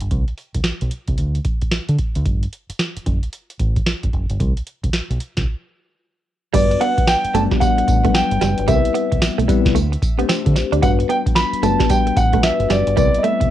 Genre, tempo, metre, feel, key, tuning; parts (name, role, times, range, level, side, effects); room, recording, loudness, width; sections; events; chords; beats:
R&B, new jack swing; 112 BPM; 4/4; swing 63% on 16ths; G major; A4 = 437 Hz
deep dub fingered electric bass; bass; 0.0-13.5 s; F#1 to D3; -20 LUFS; equal
booming analog drum machine; drums; 0.0-13.5 s; crash cymbal, hi-hat, kick drum, snare drum, tambourine; -19 LUFS; equal; cassette tape
warm concert grand piano; melody; 6.5-13.5 s; D5 to B5; -20 LUFS; right 1 dB; cassette tape
mellow tine electric piano; accompaniment; 6.5-13.5 s; F#3 to D5; -21 LUFS; left 11 dB; phaser, cassette tape
direct-recorded clean electric guitar; riff; 6.5-13.4 s; G3 to D4; -23 LUFS; right 13 dB; wide subtle chorus, cassette tape
little or no reverb; home recording on cassette; -16 LUFS; side -12 dB against mid
0.0-6.5 A section; 6.5-13.5 B section
break 5.5-6.5
0.1 N.C.; 2.3 F#m; 4.4 N.C.; 6.5 Gmaj7; 8.7 Cmaj7; 9.8 D7sus4; 10.8 Gmaj7; 13.0 Cmaj7
| 0.11 0.65 1.18 1.72 | 2.25 2.79 3.33 3.86 | 4.40 4.93 5.47 6.00 | 6.54 7.08 7.61 8.15 | 8.68 9.22 9.76 10.29 | 10.83 11.36 11.90 12.43 | 12.97